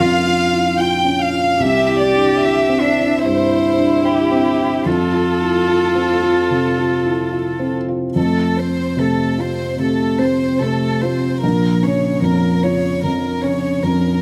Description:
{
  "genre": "neoclassical piano and strings",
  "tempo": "74 BPM",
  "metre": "4/4",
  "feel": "rubato",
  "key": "F major",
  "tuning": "A4 = 442 Hz",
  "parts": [
    { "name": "warm chamber violin section", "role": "melody", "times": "0.0-14.2 s", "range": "G4 to G5", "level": "-23 LUFS", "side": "equal", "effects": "none" },
    { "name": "warm cello", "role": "second line", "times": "0.0-14.2 s", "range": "Db3 to G4", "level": "-22 LUFS", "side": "equal", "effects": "none" },
    { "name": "felt-muted upright piano", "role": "accompaniment", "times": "0.0-14.2 s", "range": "Bb1 to F4", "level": "-20 LUFS", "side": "equal", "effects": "none" }
  ],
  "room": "moderate recital hall reverb, RT60 1.4 s",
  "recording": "close, detailed microphones",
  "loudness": "-17 LUFS",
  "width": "mono",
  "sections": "0.0-8.2 A section; 8.2-14.2 B section",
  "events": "none",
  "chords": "0.0 Bbm; 1.6 Cadd9; 4.9 F; 11.4 Bbm"
}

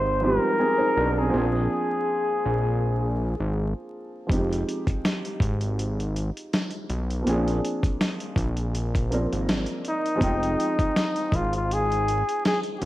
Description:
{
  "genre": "lo-fi hip hop",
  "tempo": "81 BPM",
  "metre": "4/4",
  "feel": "swing 55% on 16ths",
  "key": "F dorian",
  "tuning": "A4 = 440 Hz",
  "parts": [
    { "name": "breathy flugelhorn", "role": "melody", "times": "0.0-3.9, 9.9-12.9 s", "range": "Eb4 to C5", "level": "-25 LUFS", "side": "left 1 dB", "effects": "low-pass filter, ping-pong delay" },
    { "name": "dark upright piano", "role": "accompaniment", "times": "0.0-12.9 s", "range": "F3 to G5", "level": "-29 LUFS", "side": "right 1 dB", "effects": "cassette tape, low-pass filter" },
    { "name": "fat analog bass", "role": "bass", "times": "0.0-12.9 s", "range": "F1 to B1", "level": "-26 LUFS", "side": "equal", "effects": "none" },
    { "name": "dusty soul sampler-style drum kit", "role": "drums", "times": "4.3-12.9 s", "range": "hi-hat, kick drum, snare drum", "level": "-26 LUFS", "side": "equal", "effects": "overdrive" }
  ],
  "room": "moderate plate reverb, RT60 1.5 s, small room ambience",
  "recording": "dreamy mix soaked in reverb, vinyl crackle",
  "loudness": "-22 LUFS",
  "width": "side -16 dB against mid",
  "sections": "0.0-12.9 A section",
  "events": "none",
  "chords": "0.0 Fm7; 1.3 Bb7; 4.3 Fm7; 7.3 Bb7; 10.2 Fm9"
}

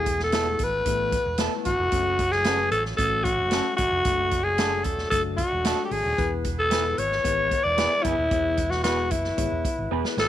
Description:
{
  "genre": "uptempo 1960s-style soul",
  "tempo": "113 BPM",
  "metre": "4/4",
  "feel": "straight",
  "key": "unclear",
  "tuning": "A4 = 435 Hz",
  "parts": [
    { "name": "breathy alto saxophone", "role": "melody", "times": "0.0-10.3 s", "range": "E4 to D5", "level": "-24 LUFS", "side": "left 1 dB", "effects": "none" },
    { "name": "mellow tine electric piano", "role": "accompaniment", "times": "0.0-10.2 s", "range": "E3 to D5", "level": "-34 LUFS", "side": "left 11 dB", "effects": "none" },
    { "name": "tonewheel organ", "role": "sustained chords", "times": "0.0-10.3 s", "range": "E3 to B4", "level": "-39 LUFS", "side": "right 1 dB", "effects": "slow rotary speaker" },
    { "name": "hollow-body short-scale fingered electric bass", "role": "bass", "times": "0.0-10.3 s", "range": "D#1 to A1", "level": "-31 LUFS", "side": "right 1 dB", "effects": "none" },
    { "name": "swinging big-band drum kit", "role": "drums", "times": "0.1-10.3 s", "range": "hi-hat, kick drum, snare drum", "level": "-30 LUFS", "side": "right 1 dB", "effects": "none" },
    { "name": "electric guitar through a small old amp", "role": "stabs", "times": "0.3-10.0 s", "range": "A3 to B4", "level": "-33 LUFS", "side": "right 11 dB", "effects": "slapback echo" },
    { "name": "vibraphone with soft mallets", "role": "second line", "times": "10.2-10.3 s", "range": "A4", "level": "-33 LUFS", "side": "right 11 dB", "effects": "none" }
  ],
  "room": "light reverb, small room ambience",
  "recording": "1960s-style stereo with parts hard left and right",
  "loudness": "-22 LUFS",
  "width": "side -12 dB against mid",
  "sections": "0.0-10.3 A section",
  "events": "drum fill 9.9-10.3",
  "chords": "0.0 Esus4; 1.9 F#m; 4.1 D; 6.2 E"
}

